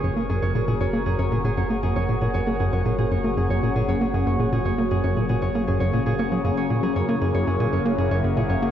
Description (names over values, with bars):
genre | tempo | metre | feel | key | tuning
ambient, sequencer-driven space music | 117 BPM | 4/4 | straight | unclear | A4 = 440 Hz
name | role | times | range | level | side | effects
phased analog pad | sustained chords | 0.0-8.7 s | C#3 to A#4 | -26 LUFS | left 1 dB | phaser, chorus, shimmer reverb
Celtic harp | arpeggios | 0.0-8.7 s | D#4 to D#5 | -28 LUFS | equal | auto-pan, analog delay, shimmer reverb
tight sequencer bass | riff | 0.0-8.7 s | F#2 to A#3 | -23 LUFS | equal | analog delay
warm sub bass | bass | 0.0-8.7 s | F#1 | -33 LUFS | equal | tube saturation
room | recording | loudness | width
wet huge ambient reverb, RT60 8.0 s | worn, warbling old tape, cassette tape, warbly pitch drift, nothing above 7.9 kHz | -20 LUFS | side -10 dB against mid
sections
0.0-8.7 A section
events
none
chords
0.0 F#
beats
0.29 | 0.81 1.32 1.83 2.34 | 2.86 3.37 3.88 4.39 | 4.91 5.42 5.93 6.45 | 6.96 7.47 7.99 8.50